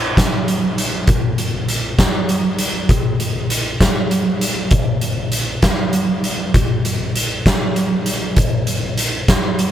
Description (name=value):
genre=rock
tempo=66 BPM (dotted quarters)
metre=6/8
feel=straight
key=none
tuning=none
part: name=oversized low-tuned drum kit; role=drums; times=0.2-9.7 s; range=hi-hat, kick drum, snare drum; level=-15 LUFS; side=equal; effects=none
room=light reverb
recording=none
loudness=-15 LUFS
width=side -10 dB against mid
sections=0.0-9.7 A section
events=none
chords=none